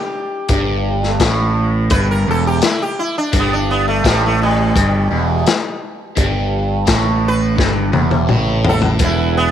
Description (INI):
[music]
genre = psychedelic rock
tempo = 85 BPM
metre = 4/4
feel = straight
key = E minor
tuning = A4 = 443 Hz
[part]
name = sitar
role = melody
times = 0.0-9.5 s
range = B2 to B4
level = -21 LUFS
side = equal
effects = tape echo
[part]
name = overdriven semi-hollow guitar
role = riff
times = 0.5-9.5 s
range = E2 to A2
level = -18 LUFS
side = right 2 dB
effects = phaser
[part]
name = growling picked electric bass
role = bass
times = 0.5-9.5 s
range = E1 to A1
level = -18 LUFS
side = right 1 dB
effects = overdrive
[part]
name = crunchy breakbeat drum kit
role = drums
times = 0.5-9.2 s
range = hi-hat, kick drum, snare drum, toms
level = -18 LUFS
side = left 3 dB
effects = none
[part]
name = overdriven combo organ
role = sustained chords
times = 9.0-9.5 s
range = E3 to B4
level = -26 LUFS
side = right 15 dB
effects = none
[sound]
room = light reverb, small room ambience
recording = 1960s-style stereo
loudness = -13 LUFS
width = side -10 dB against mid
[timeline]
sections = 0.0-9.5 A section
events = sitar solo 0.0-9.5; drum fill 7.6-9.0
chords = 0.0 Emadd11; 9.0 Esus2